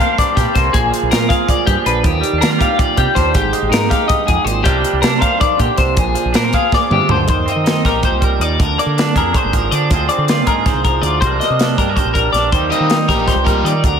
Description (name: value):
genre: math rock and midwest emo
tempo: 320 BPM (eighths)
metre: 7/8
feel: straight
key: C minor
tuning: A4 = 440 Hz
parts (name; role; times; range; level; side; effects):
- electric guitar through a small old amp; accompaniment; 0.0-14.0 s; G2 to C5; -19 LUFS; right 9 dB; slapback echo
- twelve-string electric guitar; arpeggios; 0.0-14.0 s; G4 to F5; -17 LUFS; left 6 dB; lush chorus, slapback echo
- crisp fusion drum kit; drums; 0.0-13.9 s; hi-hat, kick drum, snare drum, toms; -17 LUFS; equal; none
- growling fingered electric bass; bass; 0.4-14.0 s; Ab1 to Eb3; -20 LUFS; equal; overdrive
- crunchy overdriven guitar; riff; 12.7-13.7 s; G3 to G4; -20 LUFS; left 1 dB; slapback echo
room: moderate lush hall reverb, RT60 1.8 s, studio reverb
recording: big arena sound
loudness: -12 LUFS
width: side -7 dB against mid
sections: 0.0-7.3 A section; 7.3-14.0 B section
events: drum fill 6.7-7.3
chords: 0.0 C9sus4; 0.7 Bb7b9; 2.0 Ebmaj9; 3.4 Abmaj9; 4.7 Cm11; 6.0 Bb7; 7.3 Eb6; 8.6 Bb7/D; 9.9 Dm7b5; 11.2 Cm9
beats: 0.17 0.36 0.55 | 0.73 0.92 1.11 1.29 1.48 1.67 1.86 | 2.04 2.23 2.42 2.61 2.79 2.98 3.17 | 3.35 3.54 3.73 3.92 4.10 4.29 4.48 | 4.66 4.85 5.04 5.22 5.41 5.60 5.79 | 5.97 6.16 6.35 6.53 6.72 6.91 7.09 | 7.28 7.47 7.66 7.84 8.03 8.22 8.41 | 8.59 8.78 8.97 9.16 9.34 9.53 9.72 | 9.91 10.09 10.28 10.47 10.66 10.84 11.03 | 11.22 11.41 11.59 11.78 11.97 12.15 12.34 | 12.53 12.72 12.90 13.09 13.28 13.47 13.65 | 13.84